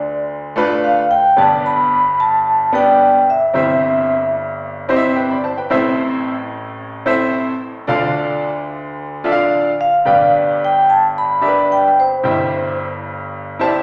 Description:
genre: soul.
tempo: 110 BPM.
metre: 4/4.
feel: straight.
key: C major.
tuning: A4 = 440 Hz.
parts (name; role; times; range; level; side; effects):
vibraphone with medium mallets; melody; 0.0-4.3, 9.8-12.8 s; C5 to B5; -16 LUFS; equal; none.
bright baby grand piano; accompaniment; 0.0-13.8 s; G1 to C6; -20 LUFS; equal; none.
room: wet large studio reverb, RT60 1.3 s.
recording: none.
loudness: -16 LUFS.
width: mono.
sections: 0.0-13.8 A section.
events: grand piano fill 4.6-5.7, 13.3-13.8.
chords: 0.0 Dm; 1.4 G; 3.5 C/G; 5.7 Am; 7.9 Dm; 10.1 G; 12.2 C/G.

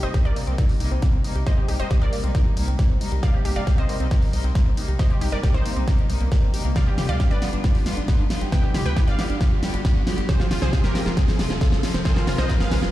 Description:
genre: uplifting trance.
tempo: 136 BPM.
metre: 4/4.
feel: straight.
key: C minor.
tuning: A4 = 440 Hz.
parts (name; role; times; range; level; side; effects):
wide unison pluck; melody; 0.0-12.9 s; Eb4 to G5; -31 LUFS; right 1 dB; vintage 12-bit sampler grit, sidechain pumping, dub echo.
rich chamber string section; sustained chords; 0.0-12.9 s; C3 to G4; -32 LUFS; left 1 dB; sidechain pumping.
analog pluck; arpeggios; 0.0-12.9 s; Bb3 to C5; -34 LUFS; left 1 dB; chorus, phaser, sidechain pumping, dub echo.
tight sequencer bass; bass; 0.0-12.9 s; F1 to D2; -26 LUFS; equal; sidechain pumping.
big-room dance drum kit; drums; 0.0-12.9 s; hi-hat, snare drum, toms; -28 LUFS; equal; sidechain pumping on toms, studio reverb, sidechain pumping on hats.
riser; sound effects; 3.0-12.9 s; none; -36 LUFS; right 1 dB; none.
electronic kick drum; drums; 0.1-12.8 s; none; -20 LUFS; equal; studio reverb.
room: light reverb, digital ambience.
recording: played on a big sound system in a bare room, stone room reverb.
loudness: -19 LUFS.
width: side -15 dB against mid.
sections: 0.0-12.9 A section.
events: build-up 0.0-12.9; drum fill 0.0-12.9; riser 3.0-12.9.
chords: 0.0 Cm7; 6.8 G7; 10.3 Fm.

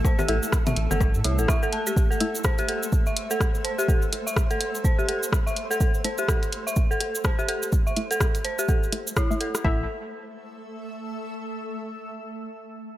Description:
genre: minimal techno.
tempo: 125 BPM.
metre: 4/4.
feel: swing 59% on 16ths.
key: A minor.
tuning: A4 = 440 Hz.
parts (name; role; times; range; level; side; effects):
dark detuned synth bell; riff; 0.0-9.9 s; E4 to A5; -28 LUFS; equal; chorus, sidechain pumping, low-pass filter, dub echo.
round analog bass; bass; 0.0-1.5, 9.6-9.9 s; G1 to A2; -25 LUFS; equal; sidechain pumping.
electronic kick drum; drums; 0.0-9.8 s; none; -23 LUFS; equal; none.
electronic bongos, claves and toms; percussion; 0.0-1.9 s; none; -31 LUFS; left 3 dB; dub echo.
flickering grainy texture; texture; 0.0-9.7 s; A3 to C5; -39 LUFS; right 1 dB; built-in reverb, sidechain pumping.
granular cloud pad; texture; 0.0-11.5 s; A3 to E6; -37 LUFS; equal; built-in reverb, sidechain pumping.
cabasa; percussion; 0.1-9.6 s; none; -33 LUFS; right 3 dB; none.
filtered dub chord stab; stabs; 0.3-9.8 s; A3 to E5; -32 LUFS; left 2 dB; chorus, dub echo.
punchy analog drum machine; drums; 0.3-9.6 s; hi-hat, rim click; -29 LUFS; equal; overdrive.
room: light reverb, digital ambience.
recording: none.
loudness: -22 LUFS.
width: side -14 dB against mid.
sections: 0.0-9.6 A section; 9.6-11.6 B section.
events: fade-out on ambient pad 0.0-9.6; filter sweep on synth stab 0.0-9.6.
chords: 0.0 A5.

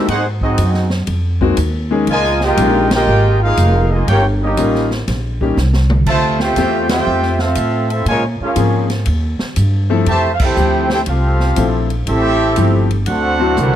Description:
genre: jazz, big band swing.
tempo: 120 BPM.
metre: 4/4.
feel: swing 68% on 8ths.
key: F major.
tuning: A4 = 440 Hz.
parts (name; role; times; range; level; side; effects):
mellow trumpet section; melody; 0.0-13.8 s; G3 to A5; -17 LUFS; right 1 dB; none.
brilliant trombone section; second line; 0.0-13.8 s; Bb2 to G4; -21 LUFS; right 2 dB; none.
clear grand piano; accompaniment; 0.0-13.6 s; F3 to E5; -19 LUFS; left 5 dB; none.
upright bass; bass; 0.0-13.8 s; F1 to Bb2; -16 LUFS; equal; none.
swinging big-band drum kit; drums; 0.1-13.8 s; crash cymbal, hi-hat, kick drum, ride cymbal, snare drum, toms; -23 LUFS; equal; none.
room: light reverb.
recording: dark, warm production.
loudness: -13 LUFS.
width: side -11 dB against mid.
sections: 0.0-13.8 A section.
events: band accent 2.8, 6.8, 10.3; drum fill 5.6-6.1, 13.6.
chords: 0.1 Ab7; 2.1 Db69; 4.1 Eb9; 6.1 Dm11; 8.1 Bbm7; 9.1 Ebadd9; 10.1 Fmaj9; 13.1 D7.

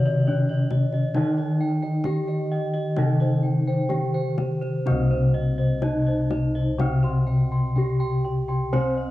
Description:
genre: Javanese gamelan.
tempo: 62-69 BPM.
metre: 4/4.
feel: straight.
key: unclear.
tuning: A4 = 440 Hz.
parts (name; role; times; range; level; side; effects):
gamelan-type bronze metallophone; melody; 0.0-9.1 s; C4 to C5; -30 LUFS; equal; none.
gamelan-type bronze metallophone; accompaniment; 0.0-9.1 s; C3 to C4; -23 LUFS; left 1 dB; cassette tape.
gamelan-type bossed gongs; arpeggios; 0.0-9.1 s; C5 to C6; -33 LUFS; left 2 dB; cassette tape, plate reverb, tape echo.
gamelan-type bronze metallophone; arpeggios; 0.0-9.1 s; C5 to C6; -34 LUFS; right 2 dB; cassette tape, plate reverb.
gamelan-type bossed gongs; bass; 0.0-9.1 s; C2 to C5; -27 LUFS; left 1 dB; none.
kendang; percussion; 0.1-9.0 s; none; -31 LUFS; left 3 dB; none.
room: moderate small room reverb, RT60 0.5 s.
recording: home recording on cassette, small room ambience.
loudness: -21 LUFS.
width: side -16 dB against mid.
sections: 0.0-4.9 A section; 4.9-9.1 B section.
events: none.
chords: none.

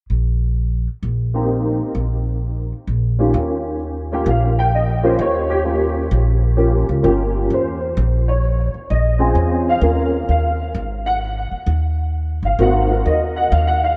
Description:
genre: jazz piano trio.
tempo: 130 BPM.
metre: 4/4.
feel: swing 66% on 8ths.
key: Eb mixolydian from 3.3 s.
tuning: A4 = 437 Hz.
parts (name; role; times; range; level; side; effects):
upright bass; bass; 0.1-14.0 s; G1 to Fb2; -21 LUFS; equal; none.
dark baby grand piano; melody; 1.3-14.0 s; Eb3 to G5; -21 LUFS; equal; ensemble chorus, diffuse ambient delay.
room: wet lush hall reverb, RT60 2.9 s.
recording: dreamy mix soaked in reverb, nothing above 10.4 kHz.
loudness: -18 LUFS.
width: mono.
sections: 0.0-3.3 A section; 3.3-14.0 B section.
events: none.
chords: 0.0 N.C.; 3.3 Eb9; 8.9 Bbm7; 9.8 Ebsus2; 10.7 Ab7(no3).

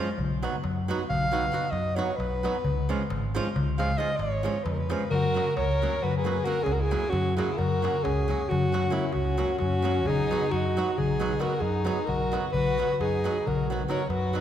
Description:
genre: balkan folk, Balkan wedding band.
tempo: 267 BPM (eighths).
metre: 11/8.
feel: straight.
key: Db mixolydian, F# mixolydian from 5.1 s.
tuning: A4 = 440 Hz.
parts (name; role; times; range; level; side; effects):
flamenco guitar; accompaniment; 0.0-14.4 s; F3 to Gb4; -32 LUFS; right 3 dB; none.
darbuka; percussion; 0.1-14.4 s; none; -32 LUFS; left 4 dB; none.
fingered electric bass; bass; 0.2-14.4 s; Ab1 to Gb2; -30 LUFS; equal; none.
clear alto saxophone; melody; 1.1-14.4 s; E4 to F5; -28 LUFS; equal; none.
dark violin; second line; 5.1-14.4 s; C#4 to A#4; -33 LUFS; left 3 dB; none.
room: wet concert hall reverb, RT60 2.1 s.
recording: recorded in a church or concert hall.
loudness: -24 LUFS.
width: side -10 dB against mid.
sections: 0.0-5.1 A section; 5.1-14.4 B section.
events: alto saxophone solo 0.0-5.1.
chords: 0.2 Cb; 2.6 Db; 5.1 F#; 10.1 B.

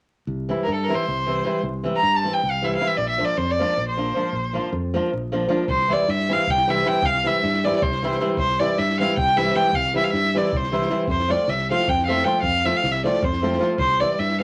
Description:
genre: balkan folk, Balkan wedding band.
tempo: 311 BPM (eighths).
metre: 7/8.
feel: straight.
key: C mixolydian.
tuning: A4 = 442 Hz.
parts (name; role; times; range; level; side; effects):
modern bright fingered electric bass; bass; 0.3-14.4 s; Bb1 to G2; -30 LUFS; equal; none.
flamenco guitar; accompaniment; 0.5-14.4 s; E3 to F4; -27 LUFS; equal; none.
clear violin; melody; 0.6-14.4 s; A4 to Bb5; -24 LUFS; equal; none.
compact cocktail drum kit; percussion; 5.7-14.4 s; kick drum, snare drum; -33 LUFS; equal; none.
room: wet club reverb, RT60 0.6 s.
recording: vinyl crackle.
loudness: -22 LUFS.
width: mono.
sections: 0.3-5.7 A section; 5.7-14.4 B section.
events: none.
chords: 0.3 C; 3.0 Bb; 5.7 C; 11.1 F; 13.8 C.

